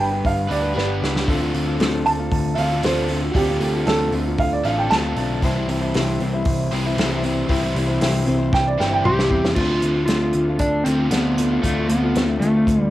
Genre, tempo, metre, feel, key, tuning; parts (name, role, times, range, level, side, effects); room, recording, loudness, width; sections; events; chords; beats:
folk rock and heartland rock; 116 BPM; 4/4; straight; D dorian; A4 = 440 Hz
dark upright piano; second line; 0.0-9.6 s; F#4 to C6; -23 LUFS; right 3 dB; tape echo
picked acoustic archtop guitar; accompaniment; 0.0-12.9 s; C3 to C5; -26 LUFS; left 3 dB
crunchy overdriven guitar; riff; 0.0-12.9 s; C3 to C5; -25 LUFS; right 1 dB
picked electric bass; bass; 0.0-12.9 s; G1 to E2; -25 LUFS; equal
unplugged drum kit; drums; 0.2-12.8 s; crash cymbal, hi-hat, kick drum, snare drum, toms; -24 LUFS; equal; cassette tape
electric slide guitar; melody; 9.1-12.9 s; A3 to G4; -20 LUFS; equal
light reverb; home recording on cassette; -17 LUFS; side -14 dB against mid
0.0-9.6 A section; 9.6-12.9 B section
upright piano solo 0.0-9.6; drum fill 0.8-1.3, 8.5-9.6
0.0 G; 1.3 Dm7; 5.4 C; 9.6 Dm7
0.24 0.76 | 1.28 1.80 2.32 2.84 | 3.35 3.87 4.39 4.91 | 5.43 5.94 6.46 6.98 | 7.50 8.01 8.53 9.05 | 9.56 10.08 10.60 11.12 | 11.63 12.15 12.67